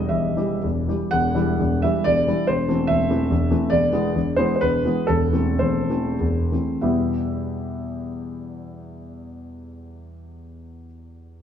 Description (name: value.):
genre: classical, romantic triple-time dance for piano with dotted rhythms.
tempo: 89-152 BPM.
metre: 3/4.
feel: rubato.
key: E minor.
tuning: A4 = 441 Hz.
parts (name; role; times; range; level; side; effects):
clear concert grand piano; solo; 0.0-11.4 s; E1 to F#5; -20 LUFS; equal; none.
room: moderate recital hall reverb, RT60 1.6 s.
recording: minimal, uncompressed stereo recording.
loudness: -19 LUFS.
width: side -8 dB against mid.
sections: 0.0-1.1 A section; 1.1-6.8 B section; 6.8-10.2 C section.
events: slowing down 3.1-6.8.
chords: 0.0 Em; 2.5 Am/E; 3.7 E7; 5.1 Am/E; 6.8 Em.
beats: 0.12 0.64 | 1.14 1.60 2.06 | 2.48 2.90 3.31 | 3.71 4.15 4.63 | 5.09 5.61 6.21 | 6.84 7.43 8.01 | 8.55 9.12 9.71.